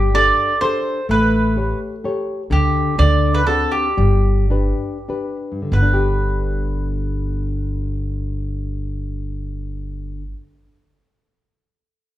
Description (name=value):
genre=italian folk, Italian serenade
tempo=91-127 BPM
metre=3/4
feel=straight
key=G major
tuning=A4 = 440 Hz
part: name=mandolin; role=melody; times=0.0-10.3 s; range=G4 to D5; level=-20 LUFS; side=right 1 dB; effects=none
part: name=nylon-string guitar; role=accompaniment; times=0.0-10.5 s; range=G2 to C#5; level=-23 LUFS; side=left 2 dB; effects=none
part: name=upright bass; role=bass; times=0.0-10.3 s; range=G1 to D2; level=-20 LUFS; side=right 1 dB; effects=none
room=moderate large studio reverb, RT60 1.1 s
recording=band playing live in one room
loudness=-17 LUFS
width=side -14 dB against mid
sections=0.0-5.7 A section; 5.7-9.6 B section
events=slowing down 2.5-5.7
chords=0.0 Gsus2; 1.1 A7; 2.5 Dsus4; 3.0 D7; 4.0 G